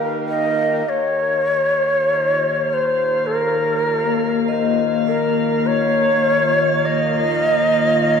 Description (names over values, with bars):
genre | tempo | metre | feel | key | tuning
ambient | 50 BPM | 4/4 | straight | Eb mixolydian | A4 = 437 Hz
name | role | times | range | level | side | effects
warm analog pad | sustained chords | 0.0-8.2 s | Eb3 to G5 | -26 LUFS | right 2 dB | chorus
vibraphone with soft mallets | arpeggios | 0.0-8.2 s | Bb3 to Eb5 | -24 LUFS | left 8 dB | ping-pong delay
pedal harmonium | drone | 0.0-8.2 s | Eb3 to Bb3 | -30 LUFS | equal | none
breathy mellow shakuhachi | melody | 0.3-8.2 s | Bb4 to Eb5 | -17 LUFS | equal | ping-pong delay
drifting glass-harmonics texture | texture | 1.2-8.2 s | F5 to F6 | -31 LUFS | right 2 dB | chorus, built-in reverb
room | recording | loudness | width
wet lush hall reverb, RT60 2.9 s | dreamy mix soaked in reverb, cassette tape | -16 LUFS | side -6 dB against mid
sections
0.9-8.2 A section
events
fade-in on analog synth pad 0.9-8.2; fade-in on harmonium 0.9-8.2; fade-in on synth texture 0.9-8.2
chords
0.0 Ebadd9